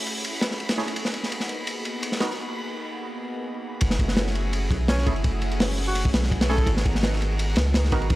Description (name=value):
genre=drum and bass, jungle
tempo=168 BPM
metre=4/4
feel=straight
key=unclear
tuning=A4 = 441 Hz
part: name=lush unison pad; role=sustained chords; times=0.0-8.2 s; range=A3 to A#4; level=-33 LUFS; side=equal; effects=chorus
part: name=backwards swelling texture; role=texture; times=0.0-2.4 s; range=B5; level=-40 LUFS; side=equal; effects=built-in reverb
part: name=crunchy breakbeat drum kit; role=drums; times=0.1-8.2 s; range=hi-hat, kick drum, ride cymbal, snare drum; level=-25 LUFS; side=equal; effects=high-pass filter on kick, high-pass filter on cymbals, high-pass filter on hats, high-pass filter on snare, high-pass filter on room
part: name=orchestra-hit-like synth stab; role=stabs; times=0.8-2.3, 5.1-8.0 s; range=A3 to A#4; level=-32 LUFS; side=right 2 dB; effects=built-in reverb, dub echo
part: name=saturated sub bass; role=bass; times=3.8-8.2 s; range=F#1 to C#2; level=-25 LUFS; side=equal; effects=none
part: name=breathy tenor saxophone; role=melody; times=4.9-6.7 s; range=C#4 to A4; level=-32 LUFS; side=equal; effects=dub echo
room=small room ambience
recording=dry, gritty hardware recording, transformer saturation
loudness=-22 LUFS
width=side -17 dB against mid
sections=0.0-3.8 A section; 3.8-8.2 B section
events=break 2.4-3.8; drop 3.8-8.2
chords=0.0 F#m9; 1.0 G#m9; 3.8 F#m9; 6.7 G#m9